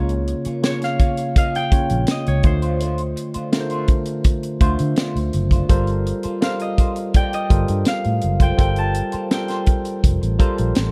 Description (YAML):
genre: lush 1970s-style soul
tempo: 83 BPM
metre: 4/4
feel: straight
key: unclear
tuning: A4 = 440 Hz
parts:
  - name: barky tine electric piano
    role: accompaniment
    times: 0.0-10.9 s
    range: Db3 to Db5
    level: -27 LUFS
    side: equal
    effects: overdrive
  - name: clean electric guitar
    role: riff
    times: 0.0-10.9 s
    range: A3 to Eb5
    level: -35 LUFS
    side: equal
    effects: wah
  - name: vintage muted fingered electric bass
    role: bass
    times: 0.0-10.9 s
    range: F1 to D3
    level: -23 LUFS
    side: equal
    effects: none
  - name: tight funk drum kit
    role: drums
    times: 0.1-10.9 s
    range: hi-hat, kick drum, snare drum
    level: -20 LUFS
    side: equal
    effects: none
  - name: concert harp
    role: melody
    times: 0.7-10.9 s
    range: C5 to A5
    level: -28 LUFS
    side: equal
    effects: none
room: small room ambience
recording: dark, warm production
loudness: -19 LUFS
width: mono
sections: 0.0-10.9 A section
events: none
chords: 0.0 Db6; 2.4 Dm7; 5.7 Gm11